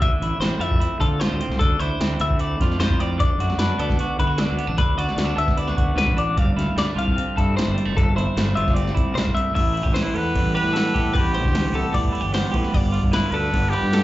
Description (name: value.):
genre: math rock and midwest emo.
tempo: 151 BPM.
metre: 4/4.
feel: straight.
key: A minor.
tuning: A4 = 438 Hz.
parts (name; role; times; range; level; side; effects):
clean electric guitar; accompaniment; 0.0-14.0 s; E2 to A4; -26 LUFS; right 4 dB; none.
twelve-string electric guitar; arpeggios; 0.0-14.0 s; A4 to F5; -26 LUFS; left 5 dB; slapback echo.
fuzz fingered electric bass; bass; 0.0-14.0 s; F1 to D3; -24 LUFS; equal; overdrive.
electro analog drum machine; drums; 0.0-14.0 s; hi-hat, kick drum, ride cymbal, snare drum; -23 LUFS; equal; overdrive.
clear trumpet; melody; 10.0-14.0 s; E4 to B4; -25 LUFS; equal; slapback echo.
room: little or no reverb.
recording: live gig heard through the venue's PA, club reverb, nothing above 7.8 kHz.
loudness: -18 LUFS.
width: side -16 dB against mid.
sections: 0.0-9.6 A section; 9.6-14.0 B section.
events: none.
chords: 0.0 Dm9; 3.2 Bm7; 6.4 G9sus4; 9.6 Am9; 12.7 G7.